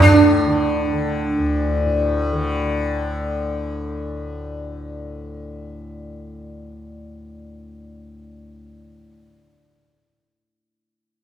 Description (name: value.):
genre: indian classical.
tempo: 192 BPM.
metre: 4/4.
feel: straight.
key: unclear.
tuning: A4 = 442 Hz.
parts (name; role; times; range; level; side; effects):
sitar; melody; 0.0-1.2 s; D4; -17 LUFS; right 3 dB; none.
tanpura; drone; 0.0-9.5 s; D2 to D3; -24 LUFS; left 2 dB; none.
room: wet recital hall reverb, RT60 1.4 s.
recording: recorded in a church or concert hall.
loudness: -19 LUFS.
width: side -10 dB against mid.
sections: 0.0-2.5 A section.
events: none.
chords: none.